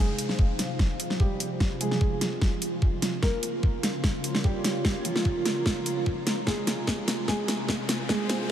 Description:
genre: heavy wobble dubstep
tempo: 148 BPM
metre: 4/4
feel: half-time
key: F minor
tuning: A4 = 440 Hz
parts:
  - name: dark baby grand piano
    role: melody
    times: 0.0-8.5 s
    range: F3 to Bb4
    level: -32 LUFS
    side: right 1 dB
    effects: analog chorus, low-pass filter, diffuse ambient delay
  - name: lush unison pad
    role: sustained chords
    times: 0.1-8.5 s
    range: C3 to F4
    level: -35 LUFS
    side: equal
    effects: chorus, phaser, sidechain pumping
  - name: granular cloud pad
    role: texture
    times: 0.0-8.5 s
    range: Eb4 to Bb5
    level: -35 LUFS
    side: right 2 dB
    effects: built-in reverb, sidechain pumping
  - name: dubstep drum kit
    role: drums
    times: 0.2-8.4 s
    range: hi-hat, snare drum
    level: -29 LUFS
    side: equal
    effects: none
  - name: electronic kick drum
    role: drums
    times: 0.4-8.2 s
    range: none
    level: -25 LUFS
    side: equal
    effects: none
  - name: riser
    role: sound effects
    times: 7.4-8.5 s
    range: none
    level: -44 LUFS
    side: left 2 dB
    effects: none
room: moderate huge ambient reverb, RT60 8.6 s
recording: dreamy mix soaked in reverb, high-pass filter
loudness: -24 LUFS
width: side -10 dB against mid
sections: 0.0-8.5 A section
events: build-up 0.0-8.5; drum fill 0.0-8.5; filter sweep on analog synth pad 0.0-8.5; filter sweep on grand piano 0.0-8.5; filter sweep 0.0-8.5; riser 7.4-8.5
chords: 0.0 Fm; 3.2 Bbm; 6.5 Fm

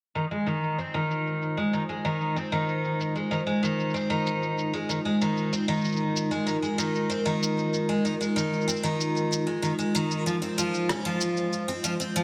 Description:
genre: folktronica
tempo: 95 BPM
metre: 4/4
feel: straight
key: F minor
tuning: A4 = 440 Hz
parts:
  - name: warbly tape-like pad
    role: sustained chords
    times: 1.0-12.2 s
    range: Ab3 to C5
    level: -32 LUFS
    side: equal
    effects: chorus, built-in reverb
  - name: picked twelve-string acoustic guitar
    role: arpeggios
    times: 0.2-12.2 s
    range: Eb3 to Db4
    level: -29 LUFS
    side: equal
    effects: low-pass filter, digital delay
  - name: electronic shaker and rim click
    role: drums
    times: 0.2-12.2 s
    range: none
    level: -36 LUFS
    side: equal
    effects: low-pass filter on perc, low-pass filter on snare
room: moderate echo chamber reverb, RT60 2.0 s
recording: none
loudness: -27 LUFS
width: mono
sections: 0.2-12.2 A section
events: filter sweep on ambient pad 0.2-12.2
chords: 0.2 Fm7; 10.3 Dbmaj7 (rootless)

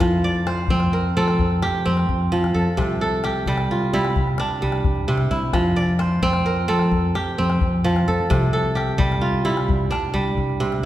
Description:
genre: west african traditional, West African string and xylophone music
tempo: 87 BPM (dotted quarters)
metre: 12/8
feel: straight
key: F major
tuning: A4 = 440 Hz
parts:
  - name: kora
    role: arpeggios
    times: 0.0-10.9 s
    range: C3 to D5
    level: -21 LUFS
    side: right 2 dB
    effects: none
  - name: fingered electric bass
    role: bass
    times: 0.0-10.9 s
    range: C2 to F3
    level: -22 LUFS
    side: left 1 dB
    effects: none
  - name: calabash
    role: percussion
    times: 0.0-10.8 s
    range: none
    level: -27 LUFS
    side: left 2 dB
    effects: none
room: wet recital hall reverb, RT60 1.7 s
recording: heard from further back in the room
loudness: -18 LUFS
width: side -13 dB against mid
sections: 0.0-10.9 A section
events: none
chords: 0.0 F; 2.8 C; 5.5 F; 8.3 C

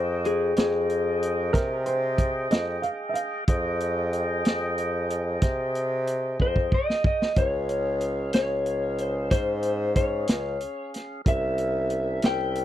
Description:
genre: slow blues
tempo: 62 BPM (dotted quarters)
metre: 12/8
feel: straight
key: F minor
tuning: A4 = 439 Hz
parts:
  - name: electric slide guitar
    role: melody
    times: 0.0-12.6 s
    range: Ab4 to G5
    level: -27 LUFS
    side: left 3 dB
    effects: none
  - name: tonewheel organ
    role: sustained chords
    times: 0.0-12.6 s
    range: Db4 to G5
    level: -33 LUFS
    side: right 1 dB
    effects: overdrive, slow rotary speaker
  - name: warm bassoon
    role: bass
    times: 0.0-12.6 s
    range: C2 to C3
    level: -27 LUFS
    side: equal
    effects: none
  - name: vintage drum kit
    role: drums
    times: 0.3-12.6 s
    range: hi-hat, kick drum, snare drum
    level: -24 LUFS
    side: equal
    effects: none
  - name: dark upright piano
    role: second line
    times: 1.5-5.0 s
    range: Bb4 to F5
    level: -31 LUFS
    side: right 4 dB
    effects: none
room: little or no reverb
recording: dry, close 1970s-style studio recording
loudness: -23 LUFS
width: side -12 dB against mid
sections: 0.0-12.6 A section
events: drum fill 6.4-7.4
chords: 0.0 Fm9; 7.4 Db; 11.3 C7b9

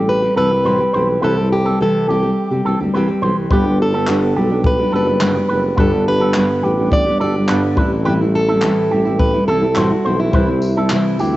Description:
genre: acoustic pop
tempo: 105 BPM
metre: 4/4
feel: straight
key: unclear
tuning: A4 = 440 Hz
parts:
  - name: fingerpicked plugged-in steel-string acoustic guitar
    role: melody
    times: 0.0-11.4 s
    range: E4 to D5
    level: -19 LUFS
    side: equal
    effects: cassette tape
  - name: nylon-string guitar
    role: accompaniment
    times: 0.0-11.4 s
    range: G2 to G4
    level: -18 LUFS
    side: right 1 dB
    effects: cassette tape
  - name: warm upright piano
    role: accompaniment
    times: 0.0-11.4 s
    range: G3 to C5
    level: -29 LUFS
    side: left 4 dB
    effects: none
  - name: electric guitar with an envelope filter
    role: arpeggios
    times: 0.0-11.4 s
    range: G4 to C5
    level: -25 LUFS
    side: right 2 dB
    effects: cassette tape
  - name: mellow tuba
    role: bass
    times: 0.0-11.4 s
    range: F#1 to C3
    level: -20 LUFS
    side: equal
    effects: none
  - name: compact cocktail drum kit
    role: drums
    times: 3.5-11.3 s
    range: handclaps, kick drum, tambourine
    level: -20 LUFS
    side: equal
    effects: cassette tape
room: small room ambience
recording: home recording on cassette, nothing above 8.0 kHz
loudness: -13 LUFS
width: side -16 dB against mid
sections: 0.0-11.4 A section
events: none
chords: 0.0 Am7; 1.2 C; 3.5 G; 7.8 Am7; 10.3 C

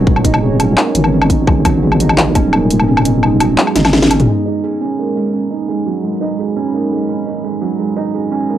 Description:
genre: half-time drum and bass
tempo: 171 BPM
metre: 4/4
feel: half-time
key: unclear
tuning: A4 = 437 Hz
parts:
  - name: deep dark ambient pad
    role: sustained chords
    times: 0.0-8.6 s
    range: G#3 to B5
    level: -20 LUFS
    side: equal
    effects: chorus, built-in reverb, vintage 12-bit sampler grit, sidechain pumping, cassette tape
  - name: felt-muted upright piano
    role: arpeggios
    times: 0.0-8.6 s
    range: F#3 to G#4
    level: -18 LUFS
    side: right 6 dB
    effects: low-pass filter, cassette tape, tape echo
  - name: deep soft wobble bass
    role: bass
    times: 0.0-4.3 s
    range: D#1 to G#1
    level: -14 LUFS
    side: left 1 dB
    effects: chorus
  - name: electronic kick drum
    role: drums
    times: 0.1-2.4 s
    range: none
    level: -13 LUFS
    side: left 1 dB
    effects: overdrive, small room ambience
  - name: drum and bass drum kit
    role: drums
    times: 0.2-4.3 s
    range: handclaps, hi-hat, snare drum, toms, woodblock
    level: -14 LUFS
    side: left 1 dB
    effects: overdrive, small room ambience
room: wet studio reverb, RT60 0.6 s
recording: home recording on cassette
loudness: -12 LUFS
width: side -11 dB against mid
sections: 0.0-4.3 A section; 4.3-8.6 B section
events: kick drops out 2.9-4.3; drum fill 3.8-4.3; band accent 3.9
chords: 0.0 G#m

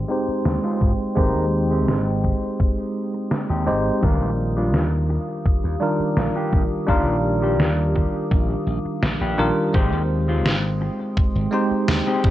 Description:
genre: vaporwave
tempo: 84 BPM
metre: 4/4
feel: straight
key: Eb major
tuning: A4 = 438 Hz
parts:
  - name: bell-like tine electric piano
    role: accompaniment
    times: 0.0-12.3 s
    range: Eb3 to C5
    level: -23 LUFS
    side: equal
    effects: fast stereo tremolo, wide subtle chorus, tape echo
  - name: warbly tape-like pad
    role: sustained chords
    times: 0.0-12.3 s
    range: Ab3 to Eb6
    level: -31 LUFS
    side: right 2 dB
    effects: chorus, built-in reverb, phaser
  - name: slap bass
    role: bass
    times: 0.0-12.3 s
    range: Ab1 to Ab2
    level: -23 LUFS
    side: equal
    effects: tube saturation
  - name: mellow electric guitar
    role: riff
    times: 0.3-12.3 s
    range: G3 to Bb4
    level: -28 LUFS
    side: left 2 dB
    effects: wide subtle chorus, vintage 12-bit sampler grit, low-pass filter, tape echo
  - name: electronic snare drum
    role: drums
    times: 0.5-12.0 s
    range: none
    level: -23 LUFS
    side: equal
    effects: none
  - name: electronic kick drum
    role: drums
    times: 0.8-12.3 s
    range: none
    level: -20 LUFS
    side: equal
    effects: none
room: light reverb, digital ambience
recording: cassette tape, low-pass filter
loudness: -18 LUFS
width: side -14 dB against mid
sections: 0.0-12.3 A section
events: filter sweep on ambient pad 0.0-12.3; filter sweep on clean electric guitar 0.0-12.3; filter sweep 0.0-12.3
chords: 0.0 Abmaj7; 4.0 Ebmaj9; 9.7 Abmaj7

